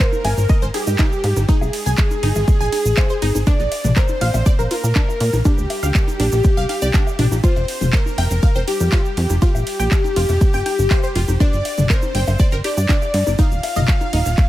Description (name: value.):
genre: progressive house.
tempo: 121 BPM.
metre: 4/4.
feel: straight.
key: F dorian.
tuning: A4 = 440 Hz.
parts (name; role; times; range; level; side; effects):
soft octave-layered synth lead; melody; 0.0-14.5 s; G4 to F5; -24 LUFS; left 1 dB; chorus, phaser, cassette tape, tape echo.
soft supersaw; second line; 0.0-14.5 s; G4 to F5; -29 LUFS; equal; sidechain pumping, tape echo.
wide unison pluck; arpeggios; 0.0-14.2 s; D4 to Ab5; -26 LUFS; equal; sidechain pumping, tape echo.
dusty soul sampler-style drum kit; drums; 0.0-14.5 s; hi-hat, snare drum; -37 LUFS; equal; none.
electronic kick drum; drums; 0.0-14.5 s; none; -16 LUFS; equal; none.
house drum kit; drums; 0.0-14.5 s; handclaps, hi-hat, ride cymbal; -28 LUFS; right 1 dB; none.
egg shaker; percussion; 0.0-14.5 s; none; -34 LUFS; right 5 dB; none.
electronic congas, bongos and toms; percussion; 0.1-14.5 s; none; -27 LUFS; left 3 dB; sidechain pumping on perc, sidechain pumping on toms.
plucky analog bass; bass; 0.2-14.3 s; Eb1 to Bb2; -18 LUFS; equal; sidechain pumping.
room: digital ambience.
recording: none.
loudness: -15 LUFS.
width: side -15 dB against mid.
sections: 0.0-14.5 A section.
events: none.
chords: 0.0 Ab; 3.5 Bb; 7.4 Fsus2; 11.4 G5; 13.4 Eb.